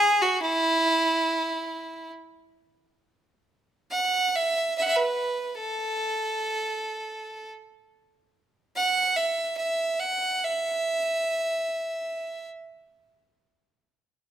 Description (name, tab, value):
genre	celtic folk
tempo	46-77 BPM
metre	3/4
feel	rubato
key	E major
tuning	A4 = 440 Hz
part	clear fiddle	solo	0.0-12.5 s	E4 to F#5	-24 LUFS	right 1 dB	none
room	moderate recital hall reverb, RT60 1.5 s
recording	minimal, uncompressed stereo recording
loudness	-24 LUFS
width	side -10 dB against mid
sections	0.0-3.0 A section; 3.0-13.7 B section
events	slowing down 7.9-13.7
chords	none